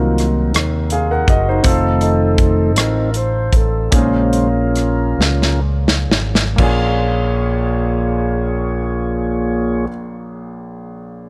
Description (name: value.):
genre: slow gospel.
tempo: 40-55 BPM (dotted quarters).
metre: 6/8.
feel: straight.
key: Bb minor.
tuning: A4 = 443 Hz.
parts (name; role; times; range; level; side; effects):
warm grand piano; accompaniment; 0.0-11.3 s; Bb1 to Gb5; -24 LUFS; equal; none.
tonewheel organ; sustained chords; 0.0-9.9 s; Db3 to Db5; -22 LUFS; equal; slow rotary speaker.
fingered electric bass with an envelope filter; bass; 0.0-9.9 s; F1 to Eb2; -21 LUFS; equal; none.
modern studio drum kit; drums; 0.2-6.8 s; crash cymbal, hi-hat, kick drum, rim click, snare drum; -19 LUFS; equal; none.
room: little or no reverb.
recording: none.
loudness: -16 LUFS.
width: mono.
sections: 0.0-6.6 A section; 6.6-11.3 B section.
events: tonewheel organ solo 0.0-6.6; slowing down 1.6-6.6; drum fill 5.2-6.6.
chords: 0.0 Cm7b5; 1.6 F7; 3.9 Bbm7.